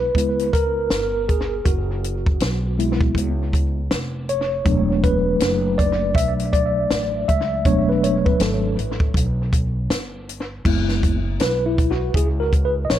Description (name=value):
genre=hip hop, jazz-hop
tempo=80 BPM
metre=4/4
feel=swing 60% on 16ths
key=unclear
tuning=A4 = 439 Hz
part: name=mellow tine electric piano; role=accompaniment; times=0.0-13.0 s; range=F#3 to E5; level=-21 LUFS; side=equal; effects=fast stereo tremolo, analog delay
part: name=upright bass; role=bass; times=0.0-13.0 s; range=E1 to C#2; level=-24 LUFS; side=equal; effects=none
part: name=compact cocktail drum kit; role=drums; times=0.1-13.0 s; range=crash cymbal, hi-hat, kick drum, snare drum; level=-22 LUFS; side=equal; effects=analog delay
room=light reverb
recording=echo-heavy mix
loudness=-18 LUFS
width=side -11 dB against mid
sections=0.0-10.7 A section; 10.7-13.0 A section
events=tine electric piano solo 0.0-10.7, 10.7-13.0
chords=0.0 F#9sus4; 4.7 E9sus4; 10.7 F#9sus4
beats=0.16 0.91 | 1.66 2.41 3.16 3.91 | 4.66 5.41 6.16 6.91 | 7.66 8.41 9.16 9.91 | 10.66 11.41 12.16 12.91